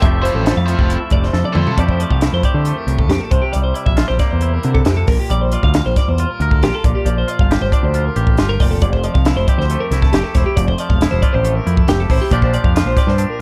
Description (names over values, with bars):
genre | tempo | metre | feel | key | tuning
math rock and midwest emo | 137 BPM | 4/4 | straight | F major | A4 = 441 Hz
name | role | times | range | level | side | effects
twangy electric guitar | accompaniment | 0.0-13.4 s | F2 to Bb4 | -26 LUFS | equal | spring reverb
twelve-string electric guitar | arpeggios | 0.0-13.4 s | G4 to F5 | -24 LUFS | equal | slapback echo
raw garage guitar | riff | 0.0-1.8 s | C4 to C5 | -25 LUFS | equal | overdrive
growling picked electric bass | bass | 0.0-13.2 s | E1 to D3 | -20 LUFS | equal | overdrive
compact cocktail drum kit | drums | 0.0-13.3 s | hi-hat, kick drum, snare drum, toms | -18 LUFS | equal | none
room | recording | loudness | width
little or no reverb | dark, warm production | -16 LUFS | mono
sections
0.0-1.8 A section; 1.8-13.4 B section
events
drum fill 1.3-1.8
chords
0.0 Fmaj9; 3.3 Gm7/Bb; 6.8 Bb6; 8.8 Fmaj9; 12.3 Bb6